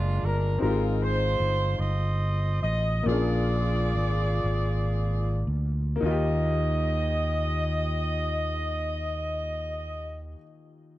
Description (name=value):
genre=slow gospel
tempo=35-52 BPM (dotted quarters)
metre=6/8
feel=straight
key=Eb major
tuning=A4 = 440 Hz
part: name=warm horn section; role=melody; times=0.0-10.2 s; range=F3 to Eb5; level=-30 LUFS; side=equal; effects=none
part: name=clear upright piano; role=accompaniment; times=0.0-11.0 s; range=Eb2 to Ab4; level=-32 LUFS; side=left 3 dB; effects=none
part: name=fingered electric bass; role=bass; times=0.0-10.3 s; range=Gb1 to Eb2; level=-27 LUFS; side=equal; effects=none
room=small room ambience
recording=dry, close 1970s-style studio recording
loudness=-24 LUFS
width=side -15 dB against mid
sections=0.6-6.0 A section; 6.0-9.5 B section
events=slowing down 0.6-6.0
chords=0.0 Bb7; 0.6 Ab6; 3.1 Bb7; 6.0 Ebadd9